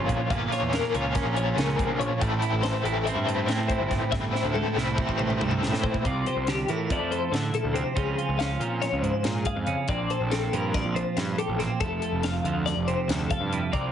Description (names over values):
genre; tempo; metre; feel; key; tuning
math rock and midwest emo; 281 BPM (eighths); 9/8; straight; F major; A4 = 439 Hz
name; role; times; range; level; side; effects
twelve-string electric guitar; accompaniment; 0.0-13.9 s; F2 to Bb4; -29 LUFS; right 5 dB; none
twelve-string electric guitar; arpeggios; 0.0-13.9 s; G4 to F5; -30 LUFS; left 8 dB; tremolo
biting overdriven guitar; riff; 0.0-6.0 s; A2 to F4; -29 LUFS; left 1 dB; tremolo
fuzz picked electric bass; bass; 0.0-13.9 s; F1 to D3; -30 LUFS; equal; overdrive
crisp fusion drum kit; drums; 0.1-13.8 s; hi-hat, kick drum, snare drum, toms; -32 LUFS; equal; none
room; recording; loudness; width
light reverb; heavily compressed radio sound, nothing above 10.4 kHz; -24 LUFS; side -9 dB against mid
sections
0.0-6.0 A section; 6.0-13.9 B section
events
drum fill 4.1-6.0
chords
0.0 Bbmadd9; 2.2 Am7; 6.0 C7sus4; 6.9 Fmaj7; 8.0 Dbmaj7; 9.9 Bbmaj9; 11.8 Fmaj7